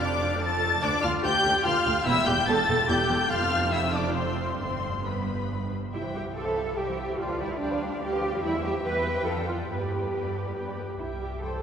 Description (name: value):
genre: quick classical-period movement for string orchestra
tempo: 143 BPM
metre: 3/4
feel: rubato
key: C major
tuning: A4 = 440 Hz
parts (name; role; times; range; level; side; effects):
- muted symphonic violin section; melody; 0.0-11.6 s; B4 to A6; -30 LUFS; left 3 dB; none
- muted symphonic violin section; second line; 0.0-11.5 s; B4 to B5; -32 LUFS; left 2 dB; none
- muted symphonic viola section; accompaniment; 0.0-11.6 s; D3 to C5; -32 LUFS; equal; none
- muted symphonic cello section; bass; 0.0-11.6 s; D2 to B4; -30 LUFS; right 2 dB; none
- muted symphonic double bass section; bass; 0.0-11.6 s; E1 to G2; -33 LUFS; right 2 dB; none
room: wet cathedral reverb, RT60 5.5 s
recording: recorded in a church or concert hall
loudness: -24 LUFS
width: side -7 dB against mid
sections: 0.0-5.9 A section; 5.9-11.6 B section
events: none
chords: 0.0 Dm/F; 0.8 G5/D; 2.1 Emadd11; 3.3 F5; 4.6 G; 5.9 C; 7.2 G7/D; 8.4 C/E; 9.3 Dm/F; 9.7 G; 11.0 C